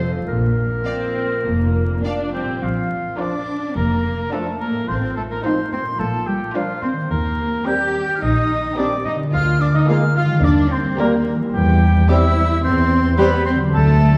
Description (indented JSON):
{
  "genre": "cinematic, playful, whimsical film cue",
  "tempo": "108 BPM",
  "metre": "4/4",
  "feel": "straight",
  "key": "Bb major",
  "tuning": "A4 = 440 Hz",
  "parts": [
    { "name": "bright clarinet", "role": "second line", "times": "0.0-13.3 s", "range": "Bb3 to C5", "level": "-32 LUFS", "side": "equal", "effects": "none" },
    { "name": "concert harp", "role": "arpeggios", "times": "0.0-14.2 s", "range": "F2 to C5", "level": "-26 LUFS", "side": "equal", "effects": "none" },
    { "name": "warm studio cello section", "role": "bass", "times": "0.0-14.2 s", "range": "F2 to G4", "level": "-25 LUFS", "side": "equal", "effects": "none" },
    { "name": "warm studio double bass section", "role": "bass", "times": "0.0-14.2 s", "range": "F1 to E2", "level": "-23 LUFS", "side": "equal", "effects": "none" },
    { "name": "rich studio violin section", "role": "melody", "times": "0.9-13.3 s", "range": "Bb4 to F5", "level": "-35 LUFS", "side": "equal", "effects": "none" },
    { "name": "rich studio violin section", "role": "second line", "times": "0.9-13.3 s", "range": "F4 to D5", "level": "-34 LUFS", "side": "equal", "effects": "none" },
    { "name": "warm studio viola section", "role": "accompaniment", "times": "0.9-13.3 s", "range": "G3 to Eb4", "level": "-28 LUFS", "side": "equal", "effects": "none" },
    { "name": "concert flute", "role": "second line", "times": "2.3-14.2 s", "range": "F5 to G6", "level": "-28 LUFS", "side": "equal", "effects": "none" },
    { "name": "warm oboe", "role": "second line", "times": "2.3-14.2 s", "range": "F4 to G5", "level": "-29 LUFS", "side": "equal", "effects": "none" },
    { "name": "warm bassoon", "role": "accompaniment", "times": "3.2-13.3 s", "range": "F3 to Ab3", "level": "-31 LUFS", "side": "equal", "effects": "none" },
    { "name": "dark French horn section", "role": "sustained chords", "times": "3.2-13.3 s", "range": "F3 to Eb4", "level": "-32 LUFS", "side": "equal", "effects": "none" }
  ],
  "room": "wet scoring stage reverb, RT60 1.9 s",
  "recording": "heard from further back in the room, vinyl crackle",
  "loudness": "-19 LUFS",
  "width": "mono",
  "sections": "0.0-2.6 A section; 2.6-14.2 B section",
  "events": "none",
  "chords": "0.3 Bb; 4.9 F7/A; 6.0 Bb; 7.1 Eb6; 9.3 Bb7/D; 10.4 Eb; 11.5 C/E",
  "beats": "| 0.28 0.86 1.46 2.05 | 2.63 3.19 3.76 4.33 | 4.89 5.44 6.00 6.55 | 7.11 7.66 8.22 8.78 | 9.33 9.88 10.43 10.99 | 11.54 12.09 12.64 13.18 | 13.74"
}